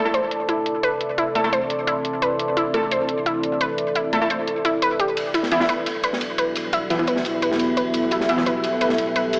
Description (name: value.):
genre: dark technical drum and bass.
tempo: 173 BPM.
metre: 4/4.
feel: straight.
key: unclear.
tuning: A4 = 442 Hz.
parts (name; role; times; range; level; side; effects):
deep dark ambient pad; sustained chords; 0.1-9.4 s; B3 to E5; -28 LUFS; equal; chorus, built-in reverb.
orchestra-hit-like synth stab; stabs; 0.0-8.4 s; E3 to A4; -23 LUFS; equal; built-in reverb, digital delay.
deep dark ambient pad; texture; 0.0-9.4 s; E4 to C6; -25 LUFS; equal; chorus, built-in reverb.
wide unison pluck; arpeggios; 0.1-9.2 s; E4 to C5; -24 LUFS; equal; digital delay.
electronic hi-hat; drums; 0.1-9.4 s; none; -30 LUFS; equal; low-pass filter on hats, low-pass filter on cymbals, low-pass filter on room.
crunchy breakbeat drum kit; drums; 5.2-9.4 s; ride cymbal, snare drum; -28 LUFS; equal; high-pass filter on cymbals, high-pass filter on snare, high-pass filter on room.
room: wet lush hall reverb, RT60 1.6 s.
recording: small speaker sound.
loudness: -19 LUFS.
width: side -32 dB against mid.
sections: 0.0-9.4 A section.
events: filter sweep on ambient pad 0.0-9.4.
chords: 0.0 Am; 5.2 Emadd9.